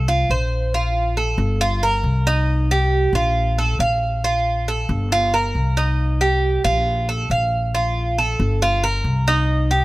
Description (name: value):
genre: latin, Cuban son and guajira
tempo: 137 BPM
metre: 4/4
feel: straight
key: unclear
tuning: A4 = 435 Hz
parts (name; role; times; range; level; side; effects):
- Cuban tres; arpeggios; 0.0-9.8 s; Eb4 to F5; -20 LUFS; right 2 dB; none
- upright bass; bass; 0.0-9.8 s; G1 to C2; -20 LUFS; left 1 dB; none
room: little or no reverb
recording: none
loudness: -17 LUFS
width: side -18 dB against mid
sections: 0.7-9.8 A section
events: none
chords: 0.0 F5; 0.7 Bb5; 1.6 Gm7; 2.5 Cm7; 3.4 Bb5; 5.1 Gm7; 6.0 Cm7; 6.9 Bb5; 8.6 Gm7